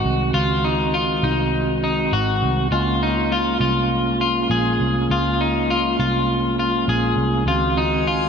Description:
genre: dream pop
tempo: 101 BPM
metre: 4/4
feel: straight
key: unclear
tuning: A4 = 441 Hz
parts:
  - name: percussive tonewheel organ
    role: sustained chords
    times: 0.0-8.3 s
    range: Eb3 to Gb4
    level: -22 LUFS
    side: right 2 dB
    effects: fast rotary speaker
  - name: electric guitar at the edge of break-up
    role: arpeggios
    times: 0.0-8.3 s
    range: Eb4 to Ab4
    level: -21 LUFS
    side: left 3 dB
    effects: wide subtle chorus, tape echo
  - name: vintage muted picked electric bass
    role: bass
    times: 0.0-8.3 s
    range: Ab1 to Db2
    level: -24 LUFS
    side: equal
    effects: none
  - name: drifting glass-harmonics texture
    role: texture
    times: 7.9-8.3 s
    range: Ab5 to Eb6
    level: -33 LUFS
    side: right 6 dB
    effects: chorus, built-in reverb, tape echo
room: wet plate reverb, RT60 3.6 s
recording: dreamy mix soaked in reverb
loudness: -17 LUFS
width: side -6 dB against mid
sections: 0.0-8.3 A section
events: none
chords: 0.0 Ab7; 2.7 Bbm7; 7.5 Ab7

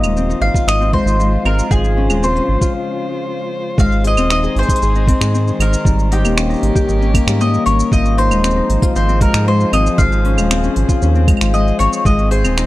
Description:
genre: folktronica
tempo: 116 BPM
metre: 4/4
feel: straight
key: Ab major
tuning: A4 = 439 Hz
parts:
  - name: mandolin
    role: melody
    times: 0.0-12.7 s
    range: G4 to F5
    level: -20 LUFS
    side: equal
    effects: tape echo
  - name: muted string quartet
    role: sustained chords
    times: 0.0-12.7 s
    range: Db3 to C5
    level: -25 LUFS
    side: left 1 dB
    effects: none
  - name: Celtic harp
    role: arpeggios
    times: 0.0-12.7 s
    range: F3 to C5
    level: -19 LUFS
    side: left 4 dB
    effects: tape echo
  - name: round analog bass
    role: bass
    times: 0.0-12.7 s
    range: Eb1 to Ab2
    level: -16 LUFS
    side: equal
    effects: none
  - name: organic electronic drum kit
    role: drums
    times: 0.0-12.7 s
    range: claves, finger snaps, hi-hat, shaker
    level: -23 LUFS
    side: right 2 dB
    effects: overdrive, studio reverb
  - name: electronic kick drum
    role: drums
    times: 0.5-12.2 s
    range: none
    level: -15 LUFS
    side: equal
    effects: studio reverb
room: little or no reverb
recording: dry, close 1970s-style studio recording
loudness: -12 LUFS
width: side -16 dB against mid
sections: 0.0-3.8 A section; 3.8-12.7 B section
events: break 2.7-3.8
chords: 0.0 Fm7; 1.7 Dbmaj7; 3.8 Ab; 5.8 Eb7; 7.9 Fm7; 10.0 Dbmaj7; 12.1 Ab

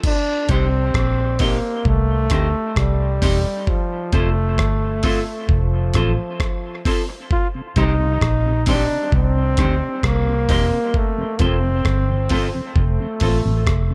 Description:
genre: dub reggae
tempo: 66 BPM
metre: 4/4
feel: straight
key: C dorian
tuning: A4 = 440 Hz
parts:
  - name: dusty soul sampler-style drum kit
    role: drums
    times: 0.0-13.9 s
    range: crash cymbal, hi-hat, kick drum, rim click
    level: -24 LUFS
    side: equal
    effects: none
  - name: clear trombone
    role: melody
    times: 0.1-13.9 s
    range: F3 to F4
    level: -25 LUFS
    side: equal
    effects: dub echo
  - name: semi-hollow electric guitar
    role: accompaniment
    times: 0.5-13.4 s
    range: C4 to C5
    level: -30 LUFS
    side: equal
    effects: dub echo
  - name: vintage muted fingered electric bass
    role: bass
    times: 0.5-13.9 s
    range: E1 to D2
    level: -22 LUFS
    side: equal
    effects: none
  - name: mellow tonewheel organ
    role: accompaniment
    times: 7.5-13.9 s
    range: F2 to C4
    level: -33 LUFS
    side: equal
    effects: none
room: light reverb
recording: echo-heavy mix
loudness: -19 LUFS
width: mono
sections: 0.0-13.9 A section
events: break 0.0-7.3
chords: 0.0 Cm; 3.7 F; 7.3 Cm; 10.9 F

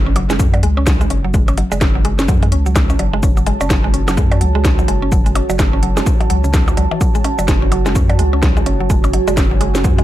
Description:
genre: minimal techno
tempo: 127 BPM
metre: 4/4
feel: swing 60% on 16ths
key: F# minor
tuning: A4 = 440 Hz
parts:
  - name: saturated sub bass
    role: bass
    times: 0.0-10.0 s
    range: F#1 to F#2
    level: -17 LUFS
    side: equal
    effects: sidechain pumping
  - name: impact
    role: sound effects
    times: 0.1-1.3 s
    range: none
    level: barely audible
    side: none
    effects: none
  - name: deep dark ambient pad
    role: texture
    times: 1.3-10.0 s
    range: F#4 to A5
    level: -24 LUFS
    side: right 5 dB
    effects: chorus, built-in reverb, sidechain pumping
  - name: mallet-like synth pluck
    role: riff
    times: 0.1-10.0 s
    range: C#3 to C#4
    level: -22 LUFS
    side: equal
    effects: chorus, sidechain pumping, dub echo
  - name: garage drum kit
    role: drums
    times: 0.2-10.0 s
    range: cabasa, hi-hat, snare drum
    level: -22 LUFS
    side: equal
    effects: none
  - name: percussion blips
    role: percussion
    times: 0.2-10.0 s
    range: none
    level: -25 LUFS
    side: equal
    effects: tape echo
  - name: electronic kick drum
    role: drums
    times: 0.4-10.0 s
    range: none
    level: -16 LUFS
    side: equal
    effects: none
room: little or no reverb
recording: none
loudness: -12 LUFS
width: side -14 dB against mid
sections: 0.0-10.0 A section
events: impact 0.0-1.3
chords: 0.0 F#m

